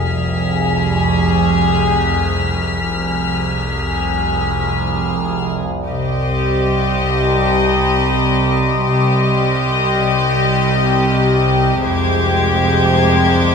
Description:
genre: cinematic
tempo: 80 BPM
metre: 4/4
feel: straight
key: C harmonic minor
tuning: A4 = 436 Hz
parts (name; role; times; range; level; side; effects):
- clear studio violin section; melody; 0.0-13.5 s; Ab4 to Eb5; -21 LUFS; left 5 dB; none
- dark studio double bass section; bass; 0.0-13.5 s; F1 to C2; -25 LUFS; right 4 dB; none
- warm studio cello section; bass; 0.0-13.5 s; C2 to F2; -22 LUFS; right 3 dB; none
- overtone-sweeping drone; drone; 0.0-13.5 s; C2; -23 LUFS; right 2 dB; chorus, built-in reverb
- warm studio violin section; texture; 0.0-13.5 s; C6 to B6; -24 LUFS; left 4 dB; none
- marimba with soft mallets; riff; 0.1-13.5 s; F2 to C4; -21 LUFS; left 1 dB; none
- rich studio violin section; second line; 5.9-13.5 s; G4; -20 LUFS; left 2 dB; none
- rich studio viola section; accompaniment; 5.9-13.5 s; G3 to Ab3; -21 LUFS; left 1 dB; none
room: wet scoring stage reverb, RT60 1.6 s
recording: minimal, uncompressed stereo recording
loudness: -14 LUFS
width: side -6 dB against mid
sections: 0.0-5.9 A section; 5.9-13.5 A section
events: none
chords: 0.0 Fm; 5.9 Cm; 11.9 Fmadd9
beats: 0.51 1.26 2.01 | 2.79 3.57 4.35 5.12 | 5.88 6.63 7.38 8.12 | 8.87 9.62 10.37 11.11 | 11.86 12.60 13.34

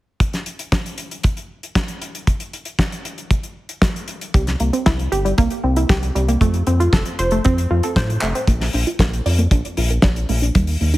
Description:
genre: italo disco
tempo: 116 BPM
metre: 4/4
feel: straight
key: Bb major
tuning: A4 = 439 Hz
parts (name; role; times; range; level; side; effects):
- damped 70s drum kit; drums; 0.2-11.0 s; handclaps, hi-hat, snare drum; -23 LUFS; left 1 dB; studio reverb
- kick drum; drums; 0.2-10.7 s; none; -18 LUFS; equal; studio reverb
- analog pluck; arpeggios; 4.3-11.0 s; G3 to D5; -21 LUFS; right 1 dB; chorus, digital delay
- round analog bass; bass; 4.3-11.0 s; F1 to A2; -19 LUFS; equal; none
room: light reverb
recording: heavily compressed radio sound, multiband compression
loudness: -16 LUFS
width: side -17 dB against mid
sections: 0.2-8.5 A section; 8.5-11.0 B section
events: drum fill 8.2; filter sweep on synth arpeggio sound 8.5-11.0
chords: 0.2 N.C.; 4.3 C7(no3); 6.4 F; 8.5 Bb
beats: | 0.21 0.72 1.24 1.76 | 2.27 2.79 3.31 3.83 | 4.34 4.86 5.38 5.90 | 6.41 6.93 7.45 7.96 | 8.48 9.00 9.52 10.03 | 10.55

